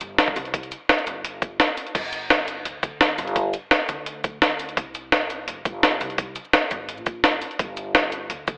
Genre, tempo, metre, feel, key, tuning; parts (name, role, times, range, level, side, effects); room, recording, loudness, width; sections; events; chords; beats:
liquid drum and bass; 170 BPM; 4/4; straight; G minor; A4 = 440 Hz
upright bass; bass; 0.0-8.6 s; G1 to D2; -32 LUFS; equal
jungle sampler-style drum kit; drums; 0.0-8.6 s; cabasa, crash cymbal, hi-hat, snare drum; -20 LUFS; equal
electronic kick drum; drums; 0.3-8.6 s; -25 LUFS; equal; overdrive
light reverb; telephone sound; -20 LUFS; side -37 dB against mid
0.0-1.9 A section; 1.9-8.6 A section
drop 0.0-1.9, 1.9-8.6
0.18 | 0.54 0.89 1.24 1.60 | 1.95 2.30 2.65 3.01 | 3.36 3.71 4.07 4.42 | 4.77 5.12 5.48 5.83 | 6.18 6.54 6.89 7.24 | 7.60 7.95 8.30